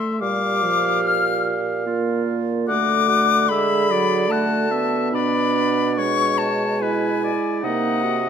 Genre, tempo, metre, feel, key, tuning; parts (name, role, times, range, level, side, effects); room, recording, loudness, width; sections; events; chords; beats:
classical, slow romantic movement for wind quintet; 72 BPM; 3/4; rubato; A4 = 442 Hz
bright concert flute; melody; 0.0-8.3 s; F#5 to F6; -22 LUFS; left 8 dB
warm oboe; second line; 0.0-8.3 s; B4 to F#5; -25 LUFS; left 1 dB
dark French horn; accompaniment; 0.0-8.2 s; F3 to B3; -25 LUFS; right 1 dB
warm clarinet; accompaniment; 0.2-8.3 s; D4 to G#4; -26 LUFS; right 11 dB
mellow bassoon; bass; 0.2-8.3 s; Bb2 to D3; -26 LUFS; right 3 dB
moderate recital hall reverb, RT60 1.4 s; -18 LUFS; side -7 dB against mid
0.0-8.3 A section
0.2 Bb; 2.7 D; 5.1 G#dim/B; 7.6 G#7/B# (rootless)
| 0.21 1.04 1.87 | 2.68 3.49 4.30 | 5.13 5.98 6.82 | 7.64